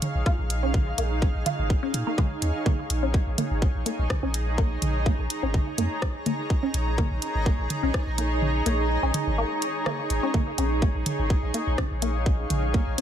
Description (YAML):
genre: minimal techno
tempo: 125 BPM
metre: 4/4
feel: swing 53% on 16ths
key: Bb minor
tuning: A4 = 440 Hz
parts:
  - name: garage drum kit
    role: drums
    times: 0.0-13.0 s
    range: hi-hat, rim click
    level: -30 LUFS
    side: equal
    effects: small room reverb
  - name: electronic toms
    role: percussion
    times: 0.0-12.6 s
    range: none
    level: -33 LUFS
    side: right 2 dB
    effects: small room reverb, tape echo
  - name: granular cloud pad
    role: texture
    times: 0.0-13.0 s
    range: Eb4 to Bb5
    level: -29 LUFS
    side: right 1 dB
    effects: built-in reverb, sidechain pumping
  - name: punchy sub bass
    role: bass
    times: 0.1-13.0 s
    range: Ab1 to Bb2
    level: -27 LUFS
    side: equal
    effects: tube saturation, sidechain pumping
  - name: resonant blip pluck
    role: riff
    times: 0.3-13.0 s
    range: Ab3 to F4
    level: -31 LUFS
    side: left 1 dB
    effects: chorus, phaser, sidechain pumping, dub echo
  - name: electronic kick drum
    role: drums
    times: 0.3-12.8 s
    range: none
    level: -24 LUFS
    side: equal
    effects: small room reverb
room: light reverb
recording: none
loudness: -23 LUFS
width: side -10 dB against mid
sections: 0.0-13.0 A section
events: kick drops out 8.4-10.3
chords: 0.0 Bbm